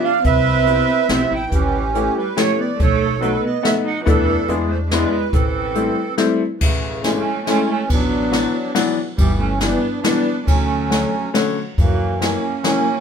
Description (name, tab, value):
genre	musette waltz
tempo	141 BPM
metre	3/4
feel	straight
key	A minor, A major from 6.6 s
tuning	A4 = 438 Hz
part	accordion	melody	0.0-13.0 s	C#3 to G5	-21 LUFS	right 5 dB	light tremolo tuning
part	dark viola	second line	0.0-13.0 s	E3 to E4	-24 LUFS	right 3 dB	none
part	clear upright piano	accompaniment	0.0-12.9 s	D3 to G4	-20 LUFS	left 5 dB	none
part	upright bass	bass	0.2-12.3 s	G1 to F#2	-23 LUFS	equal	none
part	jazz brush drum kit	drums	0.2-12.7 s	crash cymbal, hi-hat, kick drum, ride cymbal, snare drum	-21 LUFS	equal	none
room	moderate studio reverb, RT60 0.8 s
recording	band playing live in one room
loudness	-16 LUFS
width	side -7 dB against mid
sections	0.0-6.6 A section; 6.6-13.0 B section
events	none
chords	0.2 Cmaj7; 1.5 A7; 2.8 B7; 4.1 E7sus4; 4.5 E7; 5.3 Am7; 6.6 Amaj7; 7.9 D69/A; 9.2 G6; 10.5 Dmaj7; 11.8 F#7